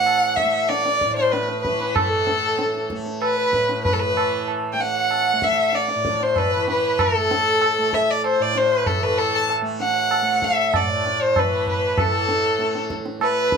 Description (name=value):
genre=indian classical, Hindustani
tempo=96 BPM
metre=4/4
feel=straight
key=A raga kafi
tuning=A4 = 439 Hz
part: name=clear violin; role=melody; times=0.0-13.6 s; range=A4 to A5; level=-20 LUFS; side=left 1 dB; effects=none
part: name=breathy bright concert flute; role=second line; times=0.0-13.6 s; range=A4 to A5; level=-27 LUFS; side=right 2 dB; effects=none
part: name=tanpura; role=drone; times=0.0-13.6 s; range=A2 to A3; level=-29 LUFS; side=right 1 dB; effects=none
part: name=tabla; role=percussion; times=0.1-13.6 s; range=none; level=-25 LUFS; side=right 2 dB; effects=none
room=moderate small room reverb, RT60 0.5 s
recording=none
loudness=-18 LUFS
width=side -6 dB against mid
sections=0.0-12.0 A section; 12.0-13.6 B section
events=none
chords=none